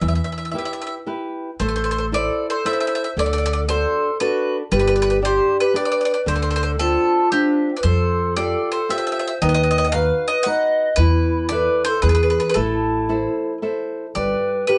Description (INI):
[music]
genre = italian folk, Italian serenade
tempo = 114 BPM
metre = 3/4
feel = straight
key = A minor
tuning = A4 = 440 Hz
[part]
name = bowl-back mandolin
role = melody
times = 0.0-14.8 s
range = G4 to F#5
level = -25 LUFS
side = equal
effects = none
[part]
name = flamenco guitar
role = accompaniment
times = 0.0-14.8 s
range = D3 to D5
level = -28 LUFS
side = equal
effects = none
[part]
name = upright bass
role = bass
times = 0.0-14.3 s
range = G1 to F2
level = -24 LUFS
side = equal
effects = none
[part]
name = reedy FM lead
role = second line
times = 1.6-14.8 s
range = D4 to D#5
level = -23 LUFS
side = equal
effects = chorus
[sound]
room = moderate studio reverb, RT60 0.6 s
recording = band playing live in one room, nothing above 10.4 kHz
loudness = -20 LUFS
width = mono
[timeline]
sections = 0.0-1.6 A section; 1.6-14.2 B section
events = none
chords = 0.0 Em; 1.6 Am; 3.2 D; 4.7 G; 6.3 Dm7; 7.8 Fadd9; 9.4 B/D#; 11.0 Esus4; 12.0 E; 12.6 Am; 14.2 Gadd9